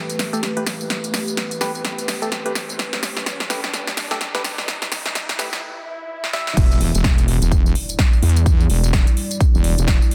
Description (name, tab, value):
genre	bass house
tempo	127 BPM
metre	4/4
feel	swing 59% on 16ths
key	E minor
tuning	A4 = 439 Hz
part	dark analog pad	sustained chords	0.0-10.1 s	E3 to D5	-32 LUFS	equal	chorus, sidechain pumping
part	riser, swell and impact	sound effects	0.1-8.5 s	none	-34 LUFS	equal	none
part	big-room dance drum kit	drums	0.1-10.1 s	crash cymbal, hi-hat, snare drum, tambourine	-26 LUFS	equal	none
part	percussive organ stab	stabs	0.3-6.8 s	G3 to E5	-31 LUFS	equal	chorus, phaser, sidechain pumping, tape echo
part	wobble bass	bass	6.6-10.0 s	E1 to E2	-20 LUFS	equal	chorus, tube saturation, sidechain pumping
part	electronic kick drum	drums	6.6-10.0 s	none	-18 LUFS	equal	none
room	light reverb, digital ambience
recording	dense, heavily limited modern master, high-pass filter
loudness	-20 LUFS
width	mono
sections	0.0-6.6 A section; 6.6-10.1 B section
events	build-up 0.0-6.6; drum fill 0.0-5.6, 6.2-6.6; filter sweep on synth stab 0.0-6.6; riser 0.1-5.6; break 5.6-6.6; swell 5.6-6.6; drop 6.6-10.1; impact 6.6-8.5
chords	0.0 Gadd9/E; 6.6 Em7